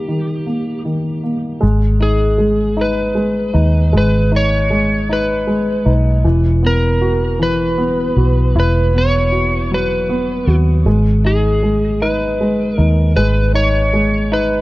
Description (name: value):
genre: six-eight pop ballad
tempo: 52 BPM (dotted quarters)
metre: 6/8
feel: straight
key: G# minor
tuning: A4 = 445 Hz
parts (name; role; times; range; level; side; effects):
- electric slide guitar; melody; 0.0-14.6 s; G4 to C#5; -19 LUFS; equal; tape echo
- dark upright piano; accompaniment; 0.0-14.6 s; D#3 to F#4; -18 LUFS; equal; none
- vintage muted fingered electric bass; bass; 1.6-14.6 s; E1 to D#2; -15 LUFS; equal; none
room: small room ambience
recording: dark, warm production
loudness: -13 LUFS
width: side -18 dB against mid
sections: 0.0-1.6 A section; 1.6-14.6 B section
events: break 0.0-1.6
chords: 0.0 D#; 1.6 G#m; 6.2 Esus2; 10.9 G#m